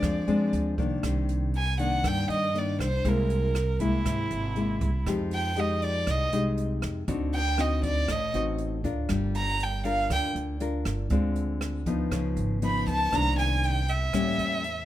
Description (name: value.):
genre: bossa nova.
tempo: 119 BPM.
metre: 4/4.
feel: straight.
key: C minor.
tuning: A4 = 439 Hz.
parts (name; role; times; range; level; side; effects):
rich violin; melody; 0.0-14.8 s; E4 to Cb6; -29 LUFS; right 2 dB; plate reverb.
nylon-string guitar; accompaniment; 0.0-14.8 s; G2 to Bb4; -29 LUFS; left 3 dB; none.
upright bass; bass; 0.0-14.8 s; G1 to G2; -29 LUFS; right 1 dB; none.
jazz brush drum kit; drums; 0.0-14.8 s; hi-hat, kick drum, rim click; -35 LUFS; right 2 dB; none.
room: light reverb.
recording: none.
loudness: -24 LUFS.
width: side -13 dB against mid.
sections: 0.0-1.0 A section; 1.0-14.8 B section.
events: violin solo 1.0-14.8.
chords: 0.0 Bb9; 1.0 Cm9; 3.0 Caug7; 5.1 Fm9; 7.1 D7b9; 9.1 Gm7; 11.1 Dm7b5; 12.1 Db9; 13.1 Cm9; 14.1 A7b9.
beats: 0.03 0.53 | 1.04 1.54 2.04 2.55 | 3.05 3.55 4.06 4.56 | 5.06 5.57 6.07 6.58 | 7.08 7.58 8.09 8.59 | 9.10 9.60 10.10 10.61 | 11.11 11.62 12.12 12.62 | 13.13 13.63 14.14 14.64.